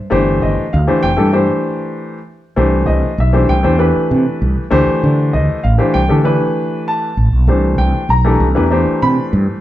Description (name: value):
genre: electric jazz fusion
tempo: 98 BPM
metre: 4/4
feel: straight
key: C major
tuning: A4 = 439 Hz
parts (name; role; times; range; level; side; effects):
- warm baby grand piano; accompaniment; 0.1-9.6 s; E3 to B5; -15 LUFS; left 1 dB; none
- mellow fretless electric bass; bass; 0.1-9.5 s; F1 to D3; -14 LUFS; equal; none
room: moderate large studio reverb, RT60 1.1 s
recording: band playing live in one room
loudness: -12 LUFS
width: side -14 dB against mid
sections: 0.0-9.6 A section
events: none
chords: 0.1 G9sus4; 2.6 Cmaj9; 4.7 Dsus2; 7.5 Cmaj9